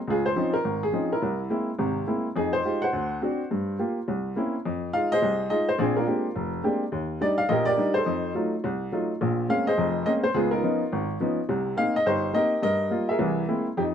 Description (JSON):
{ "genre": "jazz", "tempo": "210 BPM", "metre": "4/4", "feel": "swing 61% on 8ths", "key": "F minor", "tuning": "A4 = 441 Hz", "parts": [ { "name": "warm upright piano", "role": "solo", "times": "0.1-13.9 s", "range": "F1 to Gb5", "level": "-23 LUFS", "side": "equal", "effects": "none" } ], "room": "light reverb", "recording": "none", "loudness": "-23 LUFS", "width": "side -8 dB against mid", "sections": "0.0-4.6 A section; 4.6-13.8 B section", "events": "none", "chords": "0.1 Dbmaj9; 1.2 Caug7; 2.4 Fm9; 2.9 D7; 3.5 Gmadd11; 4.1 C7b9; 4.6 Fm7; 5.8 Bb13; 6.9 Ebmaj7; 8.1 F7b9; 9.2 Bbm9; 10.3 Db9; 11.5 Cm7; 12.6 Fm11/G; 13.2 Caug7", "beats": "| 0.08 0.36 0.65 0.93 | 1.22 1.50 1.79 2.08 | 2.36 2.65 2.93 3.22 | 3.50 3.79 4.07 4.36 | 4.64 4.93 5.21 5.50 | 5.79 6.07 6.36 6.64 | 6.93 7.21 7.50 7.78 | 8.07 8.35 8.64 8.92 | 9.21 9.49 9.78 10.06 | 10.35 10.63 10.92 11.20 | 11.48 11.77 12.05 12.34 | 12.62 12.91 13.19 13.48 | 13.76" }